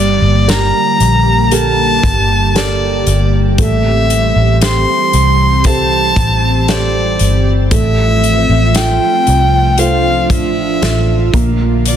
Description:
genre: pop ballad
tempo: 58 BPM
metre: 4/4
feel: straight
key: unclear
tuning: A4 = 439 Hz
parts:
  - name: warm violin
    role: melody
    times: 0.0-12.0 s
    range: D5 to C6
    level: -15 LUFS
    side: left 1 dB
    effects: none
  - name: felt-muted upright piano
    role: accompaniment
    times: 0.0-12.0 s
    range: G3 to E5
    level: -19 LUFS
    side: right 5 dB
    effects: none
  - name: airy breathy pad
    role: sustained chords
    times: 0.0-12.0 s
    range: D3 to G4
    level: -18 LUFS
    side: right 1 dB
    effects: chorus
  - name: vintage muted fingered electric bass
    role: bass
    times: 0.0-12.0 s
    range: G1 to C2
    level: -14 LUFS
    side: equal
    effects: none
  - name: loose indie drum kit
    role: drums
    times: 0.5-12.0 s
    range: hi-hat, kick drum, snare drum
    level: -17 LUFS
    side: left 1 dB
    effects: soft clipping on kick
room: small room ambience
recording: dense, heavily limited modern master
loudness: -10 LUFS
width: side -9 dB against mid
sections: 0.0-12.0 A section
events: none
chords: 0.0 Gmadd9; 3.6 Am7; 7.7 Fmaj7/A; 11.3 Bb

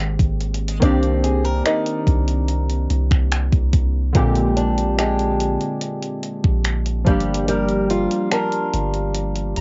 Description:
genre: contemporary R&B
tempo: 72 BPM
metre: 4/4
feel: straight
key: C minor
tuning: A4 = 440 Hz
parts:
  - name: warm analog keys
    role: accompaniment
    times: 0.0-9.6 s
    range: D3 to Bb5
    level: -26 LUFS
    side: equal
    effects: chorus, cassette tape
  - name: fingerpicked swing-style acoustic guitar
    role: arpeggios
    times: 0.0-9.6 s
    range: Bb2 to D5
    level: -26 LUFS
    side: equal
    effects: cassette tape, analog delay
  - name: long sustained 808-style bass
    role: bass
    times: 0.0-9.6 s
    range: G1 to C2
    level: -24 LUFS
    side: equal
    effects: none
  - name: clean 12-bit digital drum machine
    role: drums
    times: 0.2-9.6 s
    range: finger snaps, hi-hat, kick drum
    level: -23 LUFS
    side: equal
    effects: overdrive, cassette tape
room: little or no reverb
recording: home recording on cassette, nothing above 7.8 kHz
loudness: -20 LUFS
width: mono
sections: 0.0-9.6 A section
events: synth keys fill 9.2-9.6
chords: 0.0 Abmaj9; 0.8 Cm9; 4.2 Bb13; 7.1 Gm7

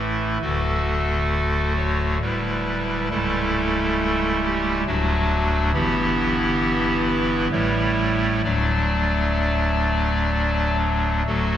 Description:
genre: classical, chorale-style piece for pipe organ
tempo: 62-70 BPM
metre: 3/4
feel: rubato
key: D major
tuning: A4 = 439 Hz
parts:
  - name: pipe organ, clarinet reed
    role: solo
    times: 0.0-11.6 s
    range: C#1 to D5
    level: -19 LUFS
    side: equal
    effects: none
room: wet church reverb, RT60 2.9 s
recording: none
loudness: -19 LUFS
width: side -10 dB against mid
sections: 0.0-11.3 A section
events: none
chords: 0.4 D; 2.2 Em7/D; 3.1 A7/C#; 4.9 D; 5.8 Em/G; 7.5 A7; 8.4 D

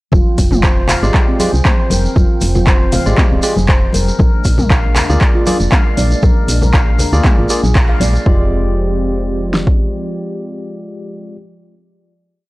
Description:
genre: afro house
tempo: 118 BPM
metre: 4/4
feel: swing 54% on 16ths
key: F dorian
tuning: A4 = 441 Hz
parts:
  - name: warm analog pad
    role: sustained chords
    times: 0.1-11.4 s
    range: F3 to G5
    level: -25 LUFS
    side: equal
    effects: chorus, sidechain pumping
  - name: handpan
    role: arpeggios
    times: 0.1-8.5 s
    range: C4 to F5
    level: -21 LUFS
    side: right 1 dB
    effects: sidechain pumping, tape echo
  - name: woody FM bass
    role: bass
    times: 0.1-9.7 s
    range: D1 to D2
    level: -16 LUFS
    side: equal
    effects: sidechain pumping
  - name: deep house drum kit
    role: drums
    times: 0.1-9.8 s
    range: kick drum, snare drum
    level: -13 LUFS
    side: equal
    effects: overdrive
  - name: congas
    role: percussion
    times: 0.1-8.2 s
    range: none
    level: -21 LUFS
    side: left 2 dB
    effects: none
  - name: shekere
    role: percussion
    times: 0.1-8.2 s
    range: none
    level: -26 LUFS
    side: right 2 dB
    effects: none
  - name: deep house drum kit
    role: drums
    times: 0.4-8.1 s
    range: handclaps, hi-hat, toms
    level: -20 LUFS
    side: equal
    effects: overdrive
  - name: barky tine electric piano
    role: stabs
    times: 1.0-11.4 s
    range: Ab3 to D5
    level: -21 LUFS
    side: left 1 dB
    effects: medium stereo tremolo, sidechain pumping, tape echo
room: little or no reverb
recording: dry, gritty hardware recording, transformer saturation, cassette tape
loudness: -11 LUFS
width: side -20 dB against mid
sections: 0.1-8.3 drop; 8.3-12.3 final chord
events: drop 0.1-8.3; band accent 7.8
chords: 0.1 Fm69; 4.2 Bb7; 8.3 Fm69

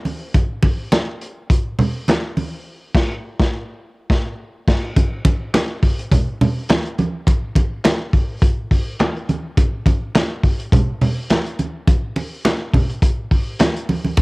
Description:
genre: funk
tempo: 104 BPM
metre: 4/4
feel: swing 56% on 16ths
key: none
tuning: none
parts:
  - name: crunchy breakbeat drum kit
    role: drums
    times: 0.1-14.2 s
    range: crash cymbal, handclaps, hi-hat, kick drum, snare drum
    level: -17 LUFS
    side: equal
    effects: cassette tape
  - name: congas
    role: percussion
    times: 0.1-14.2 s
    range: none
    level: -20 LUFS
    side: right 2 dB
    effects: none
room: small room ambience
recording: home recording on cassette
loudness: -16 LUFS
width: side -25 dB against mid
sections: 0.0-5.0 A section; 5.0-14.2 B section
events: band accent 2.7-5.0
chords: none

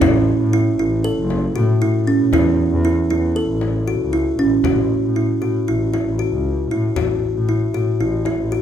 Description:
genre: contemporary instrumental, chamber music in an uneven meter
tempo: 233 BPM (eighths)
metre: 9/8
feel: straight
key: A major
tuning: A4 = 441 Hz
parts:
  - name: kalimba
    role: arpeggios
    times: 0.0-8.6 s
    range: C#4 to A4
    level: -18 LUFS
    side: right 1 dB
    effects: none
  - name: rich double bass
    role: bass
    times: 0.0-8.6 s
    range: F#1 to A2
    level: -20 LUFS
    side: left 1 dB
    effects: none
  - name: frame drum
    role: percussion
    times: 0.0-8.6 s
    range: none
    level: -24 LUFS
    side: left 6 dB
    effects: none
room: moderate recital hall reverb, RT60 1.4 s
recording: minimal, uncompressed stereo recording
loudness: -16 LUFS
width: side -9 dB against mid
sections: 0.0-4.6 A section; 4.6-8.6 B section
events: none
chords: 0.0 A6; 4.6 A5

